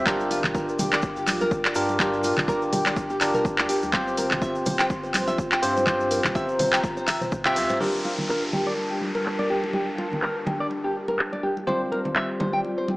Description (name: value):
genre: afro house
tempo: 124 BPM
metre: 4/4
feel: swing 55% on 16ths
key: G minor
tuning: A4 = 441 Hz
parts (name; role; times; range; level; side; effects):
- dark analog pad; sustained chords; 0.0-13.0 s; G3 to D6; -31 LUFS; equal; chorus, phaser, sidechain pumping
- bell-like tine electric piano; stabs; 0.0-13.0 s; G3 to E5; -27 LUFS; equal; sidechain pumping, dub echo
- warm sub bass; bass; 0.0-7.7 s; F1 to G2; -38 LUFS; equal; sidechain pumping
- nylon-string guitar; arpeggios; 0.1-12.9 s; F4 to G5; -28 LUFS; equal; sidechain pumping, low-pass filter, dub echo
- electronic kick drum; drums; 0.1-7.4 s; none; -31 LUFS; equal; studio reverb
- house drum kit; drums; 0.1-12.3 s; handclaps, hi-hat, toms; -26 LUFS; equal; low-pass filter on snare, studio reverb, low-pass filter on toms, low-pass filter on hats
- congas; percussion; 0.1-13.0 s; none; -33 LUFS; equal; none
- tube shaker; percussion; 0.1-7.8 s; none; -41 LUFS; equal; none
- downlifter; sound effects; 7.8-11.7 s; none; -35 LUFS; left 1 dB; none
room: moderate lush hall reverb, RT60 2.1 s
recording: small speaker sound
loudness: -22 LUFS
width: side -21 dB against mid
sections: 0.0-7.8 A section; 7.8-13.0 B section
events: drum fill 7.1-7.8; band accent 7.4; filter sweep on nylon-string guitar 7.8-13.0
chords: 0.1 Gm7; 3.9 Csus4; 7.8 Gm7; 11.7 Csus4/G